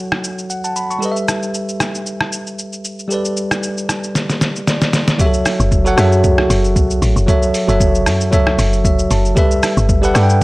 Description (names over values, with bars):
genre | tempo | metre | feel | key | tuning
amapiano | 115 BPM | 4/4 | swing 55% on 16ths | F# phrygian | A4 = 443 Hz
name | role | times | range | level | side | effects
bell-like tine electric piano | accompaniment | 0.0-10.4 s | F#3 to C#6 | -17 LUFS | right 1 dB | fast stereo tremolo, low-pass filter
trip hop sampler-style drum kit | drums | 0.1-10.4 s | hi-hat, kick drum, rim click, shaker, snare drum | -17 LUFS | equal | none
deep log drum bass | bass | 5.6-10.4 s | F#1 to G2 | -15 LUFS | equal | none
room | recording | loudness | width
little or no reverb | dry, gritty hardware recording, transformer saturation | -13 LUFS | side -21 dB against mid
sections
0.0-5.2 A section; 5.2-10.4 B section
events
drum fill 4.2-5.2; tine electric piano fill 4.4-5.2, 8.6-9.4; drop 5.2-10.4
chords
0.0 F#m7; 1.0 G69; 5.2 F#m7; 9.4 G69